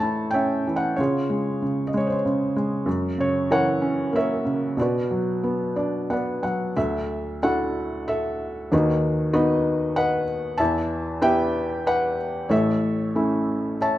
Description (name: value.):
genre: classical, lyrical solo piano.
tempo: 94 BPM.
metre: 3/4.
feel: rubato.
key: B minor, D major from 6.8 s.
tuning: A4 = 436 Hz.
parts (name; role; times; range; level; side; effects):
felt-muted upright piano; solo; 0.0-14.0 s; A1 to A5; -21 LUFS; equal; none.
room: moderate recital hall reverb, RT60 1.4 s.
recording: nothing above 10.3 kHz.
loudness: -21 LUFS.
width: side -14 dB against mid.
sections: 0.0-6.8 A section; 6.8-14.0 B section.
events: felt piano fill 5.4-6.8.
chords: 0.0 A; 1.0 C#; 2.9 F#7; 4.8 Bm; 6.8 Dadd9; 8.7 B/D#; 10.6 Em; 12.5 A.